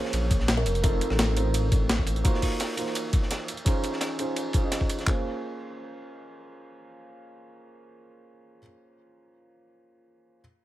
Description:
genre	liquid drum and bass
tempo	170 BPM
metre	4/4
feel	straight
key	Bb minor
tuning	A4 = 439 Hz
part	felt-muted upright piano	accompaniment	0.0-10.4 s	Bb3 to Eb5	-33 LUFS	right 2 dB	low-pass filter, dub echo
part	dark detuned saw bass	bass	0.1-2.2 s	F1 to Bb1	-26 LUFS	equal	none
part	breakbeat sampler-style drum kit	drums	0.1-5.1 s	hi-hat, rim click, snare drum	-30 LUFS	equal	none
part	crunchy breakbeat drum kit	drums	0.1-5.1 s	hi-hat, ride cymbal, snare drum	-35 LUFS	equal	high-pass filter on cymbals, high-pass filter on hats, high-pass filter on snare, high-pass filter on room
part	breakbeat sampler-style drum kit	drums	0.3-5.2 s	handclaps, kick drum	-25 LUFS	equal	none
part	kalimba	melody	0.6-1.3 s	A4 to Bb4	-35 LUFS	equal	dub echo
room	small room ambience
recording	none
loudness	-24 LUFS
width	side -15 dB against mid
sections	0.0-5.1 A section; 5.1-7.9 B section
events	filter sweep on felt piano 0.0-5.1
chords	0.0 Bbm9; 0.7 F7; 2.2 Ebm69/Bb; 3.5 Dbmaj7; 5.1 Bbm9

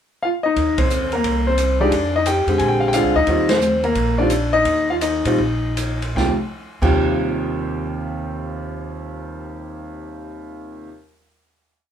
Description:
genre	jazz piano trio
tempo	150-177 BPM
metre	4/4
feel	swing 65% on 8ths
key	Eb major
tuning	A4 = 440 Hz
part	clear concert grand piano	melody	0.2-10.9 s	Eb2 to Ab5	-19 LUFS	left 1 dB	none
part	upright bass	bass	0.6-10.8 s	Bb1 to Bb2	-24 LUFS	right 1 dB	none
part	open jazz drum kit	drums	0.6-6.9 s	crash cymbal, hi-hat, kick drum, ride cymbal, snare drum	-25 LUFS	right 1 dB	none
room	moderate studio reverb, RT60 0.8 s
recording	band playing live in one room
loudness	-17 LUFS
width	side -8 dB against mid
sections	0.0-0.6 pickup bar; 0.6-6.2 A section; 6.2-9.4 final chord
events	band accent 0.7, 3.4; slowing down 3.3-6.2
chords	0.0 N.C.; 0.6 Eb5; 1.2 C7sus2; 1.9 F7sus2; 2.6 Bb13; 3.3 Eb5; 6.2 Eb69

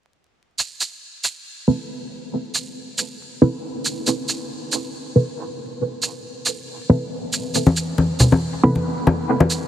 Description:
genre	deep dubstep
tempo	138 BPM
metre	4/4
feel	swing 54% on 16ths, half-time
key	A minor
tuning	A4 = 440 Hz
part	shaker	drums	0.6-9.6 s	none	-26 LUFS	right 3 dB	none
part	filtered dub chord stab	stabs	1.7-8.8 s	C4 to B4	-22 LUFS	right 1 dB	phaser, dub echo
part	congas	percussion	7.7-9.5 s	none	-17 LUFS	left 2 dB	none
room	moderate huge ambient reverb, RT60 7.3 s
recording	dense, heavily limited modern master, vinyl crackle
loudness	-19 LUFS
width	side -11 dB against mid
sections	0.6-9.7 A section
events	filter sweep on synth stab 0.6-9.7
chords	0.6 Amadd9

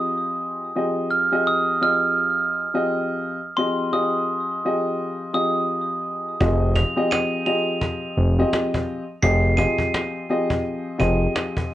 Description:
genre	hip hop, boom-bap hip-hop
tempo	85 BPM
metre	4/4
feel	swing 60% on 16ths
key	F minor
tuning	A4 = 440 Hz
part	dark upright piano	accompaniment	0.0-11.7 s	F3 to Eb5	-24 LUFS	left 1 dB	cassette tape, high-pass filter, low-pass filter
part	glockenspiel with soft plastic mallets	melody	1.1-11.2 s	C6 to F7	-24 LUFS	right 2 dB	high-pass filter, low-pass filter
part	fat analog bass	bass	6.4-11.3 s	F1	-19 LUFS	equal	none
part	cajon	drums	6.4-11.7 s	none	-26 LUFS	equal	vintage 12-bit sampler grit
room	moderate studio reverb, RT60 0.6 s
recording	worn, warbling old tape, cassette tape, warbly pitch drift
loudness	-20 LUFS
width	side -14 dB against mid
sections	0.0-6.4 A section; 6.4-11.7 B section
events	none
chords	0.0 Fm7

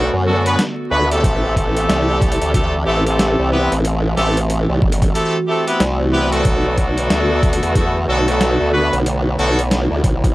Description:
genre	glitch hop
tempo	92 BPM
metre	4/4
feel	swing 61% on 16ths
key	B phrygian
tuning	A4 = 440 Hz
part	warbly tape-like pad	sustained chords	0.0-10.3 s	D3 to G4	-23 LUFS	right 1 dB	chorus, built-in reverb, vintage 12-bit sampler grit, sidechain pumping
part	brilliant horn section	stabs	0.0-9.6 s	A3 to B4	-19 LUFS	equal	vintage 12-bit sampler grit, sidechain pumping, analog delay
part	formant-sweep wobble bass	bass	0.0-10.3 s	G1 to F#2	-18 LUFS	equal	chorus, overdrive
part	boom bap sampler-style drum kit	drums	0.5-10.3 s	hi-hat, snare drum	-22 LUFS	equal	overdrive
part	electronic kick drum	drums	1.2-10.3 s	none	-17 LUFS	equal	overdrive
room	little or no reverb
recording	dry, gritty hardware recording, vinyl crackle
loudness	-14 LUFS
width	side -18 dB against mid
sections	0.0-10.3 A section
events	none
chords	0.0 Bm7; 1.2 Am7; 6.5 Bm7

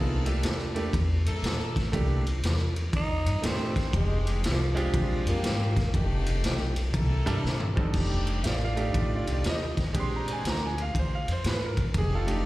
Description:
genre	electric blues shuffle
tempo	120 BPM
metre	4/4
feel	swing 65% on 8ths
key	F mixolydian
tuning	A4 = 440 Hz
part	bright concert grand piano	accompaniment	0.0-12.5 s	F2 to C6	-32 LUFS	right 3 dB	slapback echo
part	clear horn section	stabs	0.0-12.5 s	Ab3 to A4	-38 LUFS	left 2 dB	slapback echo, tape echo
part	upright bass	bass	0.0-12.4 s	E1 to Bb2	-28 LUFS	equal	none
part	raw garage drum kit	drums	0.3-12.4 s	crash cymbal, kick drum, ride cymbal, snare drum, toms	-30 LUFS	equal	none
part	growling tenor saxophone	melody	3.0-5.9 s	F3 to Eb4	-35 LUFS	right 1 dB	slapback echo, tape echo
room	studio reverb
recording	live gig heard through the venue's PA, recital hall reverb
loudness	-25 LUFS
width	side -17 dB against mid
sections	0.0-7.9 A section; 7.9-12.5 A section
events	tenor saxophone solo 0.0-7.9; drum fill 7.4-7.9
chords	0.0 C13; 3.9 Fsus2; 4.9 Bb13; 5.9 F13; 6.9 C13; 7.9 F13; 9.9 Bb13; 11.9 F13

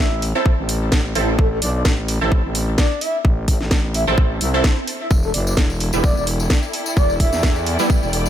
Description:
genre	bass house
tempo	129 BPM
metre	4/4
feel	swing 55% on 16ths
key	A minor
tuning	A4 = 440 Hz
part	breathy flute-like synth lead	melody	0.0-7.7 s	A4 to E5	-26 LUFS	equal	lush chorus, ping-pong delay
part	growling FM bass	bass	0.0-8.3 s	E1 to E2	-22 LUFS	equal	overdrive, sidechain pumping
part	garage drum kit	drums	0.2-8.2 s	hi-hat, snare drum	-24 LUFS	equal	none
part	orchestra-hit-like synth stab	stabs	0.4-7.9 s	G3 to A4	-23 LUFS	right 3 dB	built-in reverb, phaser, sidechain pumping, ping-pong delay
part	electronic kick drum	drums	0.5-8.0 s	none	-16 LUFS	equal	none
part	tambourine	percussion	5.1-8.3 s	none	-31 LUFS	left 3 dB	none
part	muted studio string section	texture	5.1-8.3 s	E4 to G5	-27 LUFS	equal	sidechain pumping
room	digital ambience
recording	none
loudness	-16 LUFS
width	side -11 dB against mid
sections	0.0-8.3 A section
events	none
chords	0.0 Am; 5.1 Em

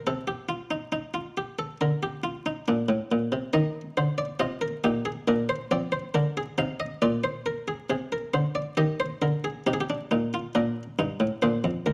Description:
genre	classical, baroque-style 3-part fugue for harpsichord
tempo	69 BPM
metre	4/4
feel	straight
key	unclear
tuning	A4 = 440 Hz
part	buff-stop harpsichord	solo	0.0-11.9 s	D2 to F5	-28 LUFS	equal	none
room	moderate recital hall reverb, RT60 1.3 s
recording	close, detailed microphones, vinyl crackle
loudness	-28 LUFS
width	mono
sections	0.0-11.9 A section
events	none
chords	0.1 F7/C; 1.8 Bb/D; 3.5 Eb; 5.3 Bb; 7.0 Bb7; 8.8 Eb; 10.5 Bb

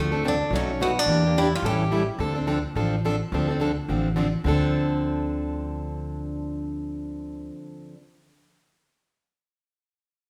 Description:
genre	acoustic string swing (jazz manouche)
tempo	214 BPM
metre	4/4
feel	swing 57% on 8ths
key	D minor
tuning	A4 = 439 Hz
part	picked steel-string acoustic guitar	melody	0.0-2.1 s	A3 to G4	-28 LUFS	equal	none
part	picked plugged-in steel-string acoustic guitar	accompaniment	0.0-8.0 s	B2 to A4	-29 LUFS	equal	none
part	upright bass	bass	0.0-7.5 s	A1 to E2	-30 LUFS	equal	none
room	wet large studio reverb, RT60 1.1 s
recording	band playing live in one room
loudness	-25 LUFS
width	mono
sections	0.0-4.4 A section; 4.4-6.7 B section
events	none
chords	0.0 Dm7; 0.5 B7; 1.1 Em7b5; 1.6 A7; 2.2 Dm7

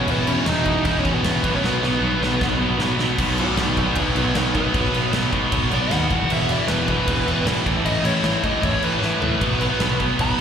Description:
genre	punk rock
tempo	154 BPM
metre	4/4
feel	straight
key	B major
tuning	A4 = 440 Hz
part	dark smooth lead guitar	melody	0.0-10.4 s	B3 to B5	-25 LUFS	equal	overdrive, slapback echo
part	cranked stack guitar	riff	0.0-10.4 s	E2 to B3	-25 LUFS	right 11 dB	overdrive
part	high-gain distorted guitar	riff	0.0-10.4 s	A2 to E4	-28 LUFS	equal	distortion
part	tight distorted guitar	riff	0.0-10.4 s	E2 to B3	-26 LUFS	left 14 dB	distortion, slapback echo
part	fuzz picked electric bass	bass	0.1-10.4 s	E1 to B2	-24 LUFS	equal	overdrive
part	big rock drum kit	drums	0.1-10.4 s	crash cymbal, kick drum, snare drum, toms	-26 LUFS	equal	none
room	studio ambience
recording	live gig heard through the venue's PA, recital hall reverb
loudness	-18 LUFS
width	side -8 dB against mid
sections	0.0-3.2 A section; 3.2-10.4 B section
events	drum fill 1.6-3.2, 9.0-9.4; lead electric guitar solo 3.2-10.4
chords	0.0 E; 1.4 B; 6.1 E; 7.7 A; 9.4 B

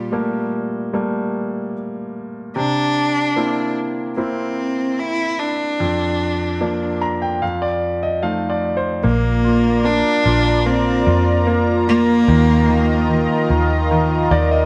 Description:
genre	pop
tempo	74 BPM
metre	4/4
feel	straight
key	Bb major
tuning	A4 = 444 Hz
part	rich cello	melody	0.0-13.5 s	G3 to E4	-22 LUFS	equal	tape echo
part	clear concert grand piano	accompaniment	0.0-14.7 s	F2 to Bb5	-23 LUFS	equal	none
part	chorused pulse-width pad	sustained chords	9.0-14.7 s	F4 to Bb5	-23 LUFS	equal	none
part	vintage muted fingered electric bass	bass	9.0-14.7 s	Bb1 to F2	-21 LUFS	equal	none
room	moderate echo chamber reverb, RT60 1.3 s, studio reverb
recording	none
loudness	-18 LUFS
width	mono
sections	0.0-9.0 A section; 9.0-14.7 B section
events	grand piano fill 6.6-9.0, 13.9-14.7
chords	0.0 Gmadd9/Bb; 2.6 C7; 5.8 Bb/F; 7.4 F7; 9.0 Bb; 12.3 Ebsus2

